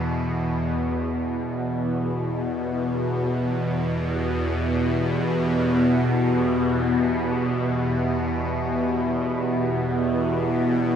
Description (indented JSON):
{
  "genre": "dark ambient drone",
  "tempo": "free time",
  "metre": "none",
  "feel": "none",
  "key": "E minor",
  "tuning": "A4 = 439 Hz",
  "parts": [
    { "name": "dark analog pad", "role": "sustained chords", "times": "2.7-11.0 s", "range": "E3 to F5", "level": "-32 LUFS", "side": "right 1 dB", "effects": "chorus" },
    { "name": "bowed-like drone", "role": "drone", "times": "0.0-11.0 s", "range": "E2 to B2", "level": "-22 LUFS", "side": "equal", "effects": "built-in reverb, phaser" }
  ],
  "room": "wet huge ambient reverb, RT60 8.7 s",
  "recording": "none",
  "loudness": "-21 LUFS",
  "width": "side -8 dB against mid",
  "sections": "0.8-11.0 A section",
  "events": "fade-in on analog synth pad 0.8-11.0",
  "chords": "0.0 F/E; 0.8 Em",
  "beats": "free time"
}